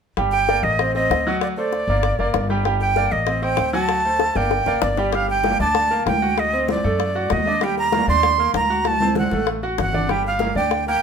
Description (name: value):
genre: latin, salsa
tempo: 194 BPM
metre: 4/4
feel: straight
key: G harmonic minor, G minor from 5.1 s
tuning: A4 = 442 Hz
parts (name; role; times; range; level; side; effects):
- bright upright piano; accompaniment; 0.2-11.0 s; F#3 to G5; -24 LUFS; right 2 dB; none
- upright bass; bass; 0.2-11.0 s; F#1 to F#2; -25 LUFS; left 1 dB; none
- bongos; percussion; 0.2-11.0 s; none; -26 LUFS; left 8 dB; none
- breathy bright jazz flute; melody; 0.3-11.0 s; D5 to C6; -20 LUFS; right 3 dB; none
- congas; percussion; 5.1-11.0 s; none; -26 LUFS; equal; none
room: moderate studio reverb, RT60 0.8 s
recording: minimal, uncompressed stereo recording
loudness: -17 LUFS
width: side -6 dB against mid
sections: 0.2-5.1 A section; 5.1-11.0 B section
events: drum fill 4.2-5.1, 8.9-10.1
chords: 0.2 Gm; 0.8 Adim; 1.4 D7; 2.0 Gm; 3.3 Am7b5; 3.9 D7; 4.5 Gm; 5.1 Gmadd9; 6.4 D7b9; 7.6 Ebmaj7; 8.9 D7; 10.1 Gm7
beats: | 0.17 0.48 0.79 1.10 | 1.41 1.72 2.03 2.34 | 2.65 2.96 3.27 3.58 | 3.89 4.20 4.51 4.82 | 5.13 5.44 5.75 6.06 | 6.37 6.68 6.99 7.30 | 7.61 7.92 8.23 8.54 | 8.85 9.16 9.47 9.78 | 10.09 10.40 10.71 11.02